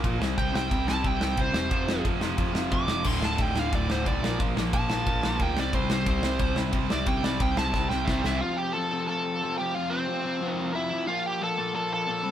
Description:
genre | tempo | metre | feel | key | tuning
punk rock | 179 BPM | 4/4 | straight | unclear | A4 = 440 Hz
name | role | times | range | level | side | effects
distorted electric guitar | riff | 0.0-8.4 s | D2 to C4 | -31 LUFS | right 6 dB | distortion
overdriven electric guitar | riff | 0.0-12.3 s | D2 to C4 | -31 LUFS | left 5 dB | none
overdriven picked electric bass | bass | 0.0-8.4 s | D1 to D2 | -32 LUFS | equal | none
loose indie drum kit | drums | 0.0-8.3 s | crash cymbal, kick drum, ride cymbal, snare drum | -29 LUFS | equal | none
bluesy overdriven lead guitar | melody | 0.4-12.3 s | C4 to D6 | -29 LUFS | right 2 dB | distortion
room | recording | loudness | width
light reverb | band playing live in one room | -24 LUFS | side -10 dB against mid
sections
0.0-8.4 A section; 8.4-12.3 B section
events
lead electric guitar solo 0.0-8.4; drum fill 7.7-8.4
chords
0.2 C5; 1.7 F5; 3.1 D5; 4.2 Bb5; 5.6 C; 8.4 F; 11.1 Bb5

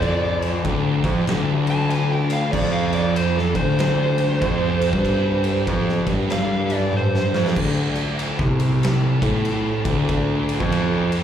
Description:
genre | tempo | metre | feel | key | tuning
stoner and doom metal | 95 BPM | 4/4 | swing 62% on 8ths | D minor from 7.6 s | A4 = 435 Hz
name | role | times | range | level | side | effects
fuzz lead guitar | melody | 0.0-7.6 s | A4 to A5 | -25 LUFS | right 2 dB | distortion, slapback echo, ping-pong delay
overdriven semi-hollow guitar | riff | 0.0-7.6 s | D2 to G2 | -30 LUFS | right 1 dB | none
thick fuzz guitar | riff | 0.0-11.2 s | D2 to C3 | -24 LUFS | left 7 dB | distortion, slapback echo
thick fuzz guitar | riff | 0.0-11.2 s | D2 to C3 | -24 LUFS | right 6 dB | distortion
clear baritone saxophone | bass | 0.0-11.2 s | C2 to A2 | -26 LUFS | equal | overdrive
oversized low-tuned drum kit | drums | 0.0-11.2 s | crash cymbal, kick drum, ride cymbal, snare drum, toms | -25 LUFS | equal | none
room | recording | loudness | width
little or no reverb | live gig heard through the venue's PA, club reverb | -18 LUFS | side -9 dB against mid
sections
0.0-7.6 A section; 7.6-11.2 B section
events
lead electric guitar solo 0.0-7.6; drum fill 6.9-7.6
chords
0.0 Dm; 2.5 F5; 7.6 Dm

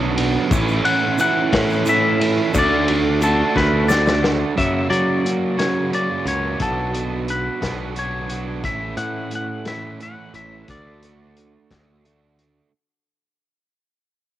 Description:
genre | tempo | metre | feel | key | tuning
indie rock | 59 BPM (dotted quarters) | 6/8 | straight | D major | A4 = 440 Hz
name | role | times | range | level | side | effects
distorted electric guitar | riff | 0.0-12.7 s | F#2 to F#4 | -23 LUFS | right 6 dB | distortion, cassette tape
modern bright picked electric bass | bass | 0.0-12.6 s | A1 to F#3 | -22 LUFS | left 2 dB | none
vintage drum kit | drums | 0.2-12.5 s | hi-hat, kick drum, ride cymbal, snare drum | -23 LUFS | left 2 dB | cassette tape
egg shaker | percussion | 0.5-4.1 s | none | -37 LUFS | left 13 dB | none
twangy electric guitar | melody | 0.8-12.0 s | A4 to F#5 | -23 LUFS | left 2 dB | vibrato effect, cassette tape, analog delay
room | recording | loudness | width
small room ambience | home recording on cassette | -17 LUFS | side -13 dB against mid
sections
0.0-4.6 A section; 4.6-12.7 B section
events
drum fill 3.5-4.6; fade-out 4.6-12.7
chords
0.5 A6; 2.5 D; 4.6 F#; 6.6 Bmadd9; 8.6 A; 10.7 D

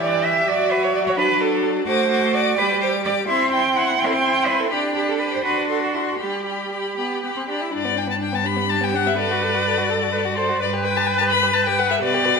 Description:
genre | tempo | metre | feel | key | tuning
quick classical-period movement for string quartet | 84 BPM (dotted quarters) | 6/8 | rubato | G major | A4 = 445 Hz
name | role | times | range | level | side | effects
rich violin | melody | 0.0-12.4 s | D5 to D6 | -23 LUFS | left 7 dB | none
clear violin | second line | 0.0-12.4 s | B3 to B4 | -26 LUFS | left 3 dB | none
rich viola | accompaniment | 0.0-12.4 s | E3 to C5 | -24 LUFS | right 2 dB | none
rich cello | bass | 0.0-12.4 s | G2 to G5 | -23 LUFS | right 5 dB | none
room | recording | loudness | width
moderate scoring stage reverb, RT60 1.8 s | minimal, uncompressed stereo recording | -18 LUFS | side -5 dB against mid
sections
0.0-7.7 A section; 7.7-12.4 B section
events
none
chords
0.5 D/F#; 1.9 D7/A; 2.6 G; 3.3 C; 4.7 G/D; 5.4 D7; 6.2 G; 9.2 D/G; 10.6 G

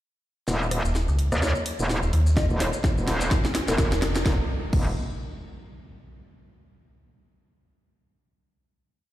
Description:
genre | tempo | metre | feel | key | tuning
bass house | 127 BPM | 4/4 | swing 57% on 16ths | unclear | A4 = 440 Hz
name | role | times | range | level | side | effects
metallic wobble bass | bass | 0.5-4.9 s | Eb1 to Eb2 | -24 LUFS | equal | chorus, sidechain pumping
garage drum kit | drums | 0.5-4.8 s | crash cymbal, hi-hat, rim click, snare drum | -30 LUFS | equal | none
maracas | percussion | 0.5-4.2 s | none | -39 LUFS | left 4 dB | none
riser and impact | sound effects | 1.6-6.1 s | none | -34 LUFS | equal | none
metallic FM bass | bass | 0.8-4.2 s | Eb1 to Eb2 | -22 LUFS | equal | sidechain pumping
mallet-like synth pluck | melody | 1.4-4.3 s | Bb4 to Eb5 | -34 LUFS | equal | chorus, tape echo
electronic kick drum | drums | 2.4-4.8 s | none | -23 LUFS | equal | none
room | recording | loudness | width
light reverb, digital ambience | played on a big sound system in a bare room, large studio reverb | -22 LUFS | side -14 dB against mid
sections
0.5-4.3 build; 4.3-6.1 final note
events
build-up 0.5-4.3; drum fill 0.5-4.3; riser 1.6-4.3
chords
0.5 Eb5; 4.3 N.C.

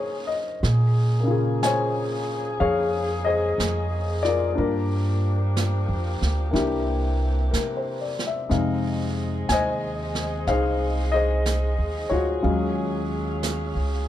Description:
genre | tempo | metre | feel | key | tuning
jazz ballad | 61 BPM | 4/4 | swing 66% on 8ths | Bb minor | A4 = 440 Hz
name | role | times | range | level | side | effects
warm grand piano | accompaniment | 0.0-14.1 s | C3 to Ab5 | -25 LUFS | left 3 dB | none
mellow saxophone section | sustained chords | 0.0-14.1 s | Db3 to F5 | -32 LUFS | equal | none
upright bass | bass | 0.6-14.1 s | C2 to C3 | -25 LUFS | right 1 dB | none
jazz brush drum kit | drums | 0.6-14.1 s | brushed snare drum, hi-hat, snare drum | -34 LUFS | right 4 dB | none
room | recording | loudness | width
light reverb | dark, warm production | -21 LUFS | side -12 dB against mid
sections
0.6-14.1 A section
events
none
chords
0.0 Bbm9; 4.6 Gm7; 6.5 C7; 8.5 Fm7; 12.4 Ebm11

